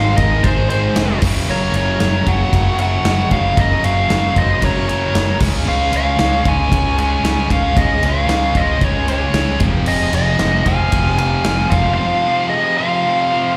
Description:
hard rock; 114 BPM; 4/4; straight; F phrygian; A4 = 440 Hz
dark smooth lead guitar; melody; 0.0-13.5 s; C5 to Ab5; -21 LUFS; equal; overdrive, slapback echo
octave-fuzz lead guitar; second line; 0.0-13.5 s; Ab4 to F5; -30 LUFS; equal; distortion, slapback echo
heavy high-gain guitar; riff; 0.0-13.6 s; F2 to Db4; -29 LUFS; equal; distortion, slapback echo
overdriven electric guitar; riff; 0.0-13.6 s; F2 to Db4; -28 LUFS; equal; slapback echo
tight distorted guitar; riff; 0.0-13.6 s; F2 to Db4; -28 LUFS; equal; distortion, slapback echo
fuzz fingered electric bass; bass; 0.0-11.9 s; F1 to Db2; -21 LUFS; equal; overdrive
big rock drum kit; drums; 0.2-11.8 s; crash cymbal, kick drum, ride cymbal, snare drum; -22 LUFS; equal
studio ambience; live gig heard through the venue's PA, club reverb; -16 LUFS; mono
0.0-13.6 A section
0.0 Ab; 1.2 Gb; 5.4 Db; 9.6 Fm

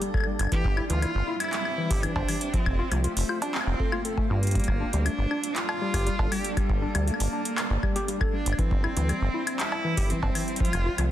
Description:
IDM; 119 BPM; 4/4; straight; G dorian; A4 = 440 Hz
granular cloud pad; sustained chords; 0.0-11.1 s; F3 to A5; -35 LUFS; equal; built-in reverb
tine electric piano; arpeggios; 0.0-11.1 s; E3 to C5; -32 LUFS; left 2 dB; medium tremolo, dub echo
booming analog drum machine; drums; 0.0-11.1 s; cowbell, handclaps, hi-hat, woodblock; -32 LUFS; left 1 dB; overdrive
electronic kick drum; drums; 0.1-10.7 s; -28 LUFS; equal; overdrive
deep acid bass; bass; 0.4-11.1 s; F1 to G2; -26 LUFS; equal
rich cello; melody; 0.5-11.1 s; G3 to G4; -32 LUFS; right 1 dB; tape echo
light reverb, digital ambience; dense, heavily limited modern master; -24 LUFS; side -12 dB against mid
0.0-11.1 A section
0.0 Gmadd9; 0.5 C/G; 2.5 F; 4.6 Gmadd9; 8.6 C/G; 10.6 F

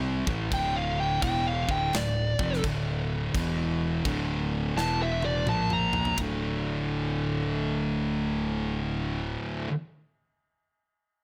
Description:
stoner and doom metal; 85 BPM; 4/4; swing 65% on 8ths; D minor; A4 = 440 Hz
thick fuzz guitar; riff; 0.0-9.7 s; D2 to C4; -34 LUFS; equal; distortion
thick fuzz guitar; riff; 0.0-9.7 s; D2 to C4; -35 LUFS; equal; distortion
fingered electric bass; bass; 0.0-9.4 s; D1 to C2; -36 LUFS; equal; overdrive
big rock drum kit; drums; 0.3-6.4 s; crash cymbal, kick drum, ride cymbal, snare drum, toms; -36 LUFS; equal
fuzz lead guitar; melody; 0.5-6.2 s; D5 to Bb5; -32 LUFS; equal; distortion, delay
light reverb, studio reverb; -28 LUFS; mono
0.0-6.2 A section; 6.2-9.0 B section
lead electric guitar solo 0.0-6.2; drum fill 4.8-6.2
0.0 Dm; 3.3 E5; 4.1 D5; 4.8 E5; 5.5 Bb5; 6.2 D5

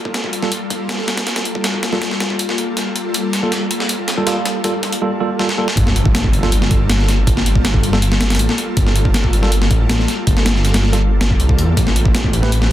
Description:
drum and bass, jungle; 160 BPM; 4/4; straight; G minor; A4 = 442 Hz
breakbeat sampler-style drum kit; drums; 0.1-12.7 s; hi-hat, kick drum, snare drum; -17 LUFS; equal; overdrive, high-pass filter on hats, high-pass filter on snare, high-pass filter on kick, high-pass filter on room
tine electric piano; stabs; 0.4-12.5 s; G3 to B4; -22 LUFS; right 2 dB; medium stereo tremolo, low-pass filter, dub echo
detuned saw bass; bass; 5.8-12.7 s; G1 to E2; -16 LUFS; equal; tube saturation
impact; sound effects; 5.8-7.3 s; -25 LUFS; equal
light reverb; dense, heavily limited modern master; -14 LUFS; side -13 dB against mid
0.0-5.8 A section; 5.8-12.7 B section
build-up 0.0-5.8; filter sweep on tine electric piano 0.0-5.8; drum fill 2.8-5.0, 5.4-5.8; drop 5.8-12.7; impact 5.8-7.3
0.0 Gm9; 11.8 Am9

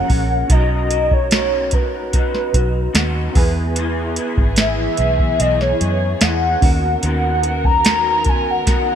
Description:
indie pop, bedroom pop; 74 BPM; 4/4; straight; A4 = 438 Hz
warbly nostalgic lead; melody; 0.0-9.0 s; B4 to A#5; -19 LUFS; equal; lush chorus
electric guitar through a small old amp; accompaniment; 0.0-9.0 s; D#3 to A#4; -25 LUFS; left 4 dB; ensemble chorus, warbly pitch drift
warbly lo-fi synth keys; accompaniment; 0.0-9.0 s; E#3 to A#5; -28 LUFS; right 4 dB; chorus, cassette tape
vintage muted fingered electric bass; bass; 0.1-8.8 s; G#1 to F#2; -21 LUFS; equal
soft vintage rhythm box; drums; 0.1-8.9 s; hi-hat, kick drum, snare drum; -18 LUFS; equal
warm chamber string section; sustained chords; 3.8-9.0 s; D#3 to A#4; -28 LUFS; equal
light reverb; bright 1980s-style digital production; -14 LUFS; side -9 dB against mid
0.0-9.0 A section
drum fill 8.7
0.0 F#maj7; 0.5 Bmaj7; 3.4 E; 6.6 Bmaj7/D#

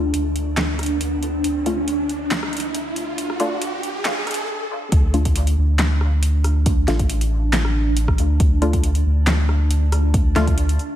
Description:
deep dubstep; 138 BPM; 4/4; swing 53% on 16ths, half-time; D phrygian; A4 = 439 Hz
granular cloud pad; sustained chords; 0.0-11.0 s; D4; -27 LUFS; right 1 dB; built-in reverb
soft dub sub bass; bass; 0.0-10.8 s; Eb1 to D2; -19 LUFS; equal; tube saturation
riser; sound effects; 0.0-4.5 s; -30 LUFS; right 2 dB
deep house drum kit; drums; 0.1-10.9 s; handclaps, hi-hat, rim click, snare drum; -25 LUFS; equal; studio reverb
filtered dub chord stab; stabs; 1.7-10.4 s; A3 to F4; -26 LUFS; left 2 dB; chorus, dub echo
electronic kick drum; drums; 4.9-10.6 s; -19 LUFS; equal; studio reverb
light reverb, digital ambience; high-pass filter; -17 LUFS; side -12 dB against mid
0.0-4.9 A section; 4.9-11.0 B section
build-up 0.0-4.9; riser 0.0-4.5; filter sweep 0.0-4.9; stop 4.5-4.9; drop 4.9-11.0
0.0 N.C.; 4.9 Dm

